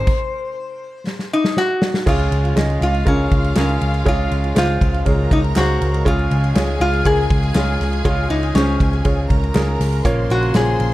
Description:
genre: piano-driven pop.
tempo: 120 BPM.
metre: 4/4.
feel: straight.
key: unclear.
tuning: A4 = 441 Hz.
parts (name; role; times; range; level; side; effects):
metal-body resonator slide guitar; melody; 0.0-10.9 s; Db4 to C5; -21 LUFS; left 1 dB; none.
rich studio violin section; second line; 0.0-10.9 s; F4 to C6; -30 LUFS; left 1 dB; none.
bright concert grand piano; accompaniment; 0.0-10.9 s; Bb2 to F5; -23 LUFS; right 1 dB; none.
chorused pulse-width pad; sustained chords; 0.0-10.9 s; Db3 to F5; -29 LUFS; left 1 dB; none.
vintage muted picked electric bass; bass; 0.0-10.9 s; Bb1 to Db2; -19 LUFS; equal; none.
unplugged drum kit; drums; 0.1-10.9 s; crash cymbal, hi-hat, kick drum, ride cymbal, snare drum; -20 LUFS; equal; none.
group handclap; percussion; 2.6-10.7 s; none; -36 LUFS; left 4 dB; none.
room: light reverb, small room ambience.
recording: dark, warm production.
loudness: -15 LUFS.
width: side -16 dB against mid.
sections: 0.0-2.1 A section; 2.1-10.9 B section.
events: stop 0.1-2.1; drum fill 1.1-2.1.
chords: 0.0 Ab; 2.1 Db; 10.0 Bbm.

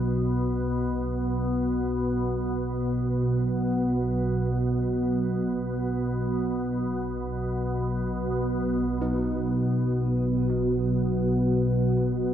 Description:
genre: dark ambient drone.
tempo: free time.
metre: none.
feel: none.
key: B major.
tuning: A4 = 440 Hz.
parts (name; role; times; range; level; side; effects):
organ-like drone; drone; 0.0-12.3 s; B1 to B2; -24 LUFS; equal; ensemble chorus, built-in reverb.
gamelan-type bossed gongs; arpeggios; 9.0-12.3 s; D#4; -38 LUFS; equal; analog delay, shimmer reverb.
room: wet lush hall reverb, RT60 2.6 s.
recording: dreamy mix soaked in reverb.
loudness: -24 LUFS.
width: side -10 dB against mid.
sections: 0.0-8.5 A section; 8.5-12.3 B section.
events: filter sweep on synth drone 0.0-8.5.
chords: 0.0 B5; 8.5 B.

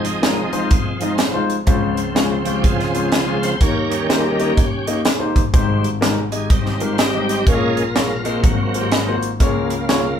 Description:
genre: uptempo gospel.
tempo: 124 BPM.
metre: 4/4.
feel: swing 63% on 8ths.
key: Ab major.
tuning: A4 = 439 Hz.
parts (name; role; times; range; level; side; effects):
warm concert grand piano; accompaniment; 0.0-10.2 s; F1 to Eb5; -21 LUFS; left 3 dB; none.
bright tonewheel organ; sustained chords; 0.0-10.2 s; Ab2 to Db5; -22 LUFS; right 2 dB; chorus vibrato, slow rotary speaker.
crisp fusion drum kit; drums; 0.0-10.0 s; hi-hat, kick drum, snare drum; -18 LUFS; equal; none.
room: wet studio reverb, RT60 0.5 s.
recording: band playing live in one room.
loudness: -16 LUFS.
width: side -8 dB against mid.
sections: 0.0-10.2 A section.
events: tonewheel organ solo 0.0-10.2.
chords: 0.0 Fm7; 1.7 Dbmaj7; 3.6 Eb7; 5.5 Abmaj7; 7.5 Bbm7; 8.4 Ab13; 9.4 Db6.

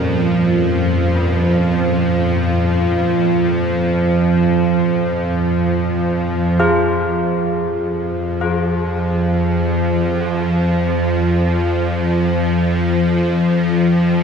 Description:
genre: dark ambient drone.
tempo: free time.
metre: none.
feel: none.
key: unclear.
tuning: A4 = 436 Hz.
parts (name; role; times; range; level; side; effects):
carillon bells; arpeggios; 0.0-13.8 s; G3 to F4; -23 LUFS; left 2 dB; ping-pong delay.
bowed-like drone; drone; 0.0-14.2 s; F2 to F3; -15 LUFS; right 1 dB; built-in reverb.
bronze singing bowl; texture; 0.0-14.2 s; F3 to G4; -32 LUFS; left 4 dB; none.
room: wet lush hall reverb, RT60 3.0 s.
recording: dreamy mix soaked in reverb.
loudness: -14 LUFS.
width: side -6 dB against mid.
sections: 0.0-6.6 A section; 6.6-14.2 B section.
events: none.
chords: 0.0 Fsus24; 6.6 F5.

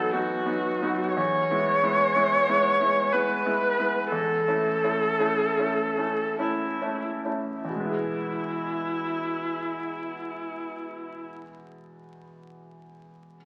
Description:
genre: classical, romantic duo for viola and grand piano.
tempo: 45-65 BPM.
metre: 3/4.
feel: rubato.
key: E major.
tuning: A4 = 441 Hz.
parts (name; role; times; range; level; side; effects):
warm viola; melody; 0.0-11.3 s; E4 to C#5; -27 LUFS; equal; none.
bright grand piano; accompaniment; 0.0-13.4 s; E2 to G#4; -32 LUFS; equal; none.
room: wet recital hall reverb, RT60 1.8 s.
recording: very old 78 rpm record, vinyl crackle.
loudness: -26 LUFS.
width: mono.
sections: 0.0-7.7 A section; 7.7-11.1 B section.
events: slowing down 0.0-7.7.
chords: 0.0 B/E; 1.2 E; 4.1 A/E; 7.7 E.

